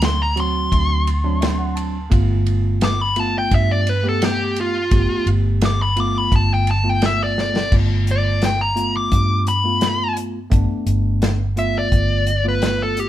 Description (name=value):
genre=straight-eighth soul blues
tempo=86 BPM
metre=4/4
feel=straight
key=G mixolydian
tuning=A4 = 440 Hz
part: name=dark smooth lead guitar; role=melody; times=0.0-13.1 s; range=F4 to D6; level=-21 LUFS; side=left 1 dB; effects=overdrive
part: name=bell-like tine electric piano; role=accompaniment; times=0.0-13.1 s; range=F#3 to A5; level=-25 LUFS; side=equal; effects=none
part: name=vintage muted fingered electric bass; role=bass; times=0.0-13.1 s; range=G1 to G2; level=-20 LUFS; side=equal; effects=none
part: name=warm soul drum kit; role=drums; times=0.0-13.1 s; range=crash cymbal, hi-hat, kick drum, ride cymbal, snare drum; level=-21 LUFS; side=equal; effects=none
room=moderate studio reverb, RT60 0.8 s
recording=band playing live in one room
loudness=-16 LUFS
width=side -12 dB against mid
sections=0.0-7.7 A section; 7.7-13.1 B section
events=lead electric guitar solo 0.0-7.7; tine electric piano fill 1.1-2.1; drum fill 7.4-7.7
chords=0.0 D7; 2.1 G7